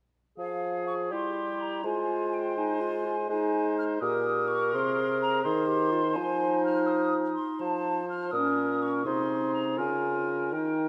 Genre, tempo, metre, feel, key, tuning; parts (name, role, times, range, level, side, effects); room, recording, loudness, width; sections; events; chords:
classical, dramatic, fast romantic movement for symphony orchestra; 83 BPM (dotted quarters); 6/8; rubato; F minor; A4 = 444 Hz
clear clarinet; second line; 0.4-10.9 s; Db4 to Ab4; -34 LUFS; equal
mellow hollow small flute group; second line; 0.4-10.9 s; F5 to F6; -35 LUFS; equal
warm oboe; second line; 0.4-10.9 s; G4 to C5; -37 LUFS; equal
mellow bassoon; accompaniment; 0.4-10.9 s; Bb2 to Ab3; -33 LUFS; equal
moderate concert hall reverb, RT60 2.0 s; -28 LUFS; mono
0.4-10.9 A section
0.4 Fm; 1.1 C/G; 1.8 Fm/Ab; 4.0 Eb/Bb; 4.7 Ab/C; 6.2 Fm7; 8.3 Bbm; 9.1 Ab/C; 9.8 Bbm/Db